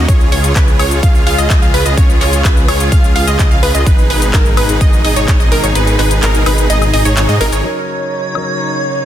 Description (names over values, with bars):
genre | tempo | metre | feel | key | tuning
EDM, festival progressive house | 127 BPM | 4/4 | straight | unclear | A4 = 439 Hz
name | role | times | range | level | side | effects
clear studio string section | sustained chords | 0.0-9.1 s | Cb3 to F4 | -23 LUFS | left 2 dB | sidechain pumping, low-pass filter
wide unison pluck | arpeggios | 0.0-7.6 s | Bb4 to F5 | -19 LUFS | right 1 dB | cassette tape, sidechain pumping, digital delay
supersaw chords | riff | 0.0-7.6 s | Eb4 to F5 | -18 LUFS | right 1 dB | sidechain pumping, digital delay
detuned saw bass | bass | 0.0-7.6 s | Ab1 to Ab2 | -15 LUFS | equal | sidechain pumping
electronic kick drum | drums | 0.1-5.4 s | none | -11 LUFS | equal | none
pop drum kit | drums | 0.1-8.4 s | handclaps, hi-hat, shaker, woodblock | -20 LUFS | left 3 dB | none
airy dreamy lead | melody | 7.6-9.1 s | Db5 | -18 LUFS | right 1 dB | chorus, vintage 12-bit sampler grit, digital delay
clear grand piano | accompaniment | 7.6-9.1 s | Gb3 to Bb4 | -22 LUFS | right 1 dB | sidechain pumping, digital delay
room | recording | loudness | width
little or no reverb | dense, heavily limited modern master | -9 LUFS | side -11 dB against mid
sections
0.0-7.6 A section; 7.6-9.1 B section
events
drop 0.0-7.6; kick drops out 5.8-7.6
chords
0.1 Db; 3.9 Abm; 7.6 Ebm7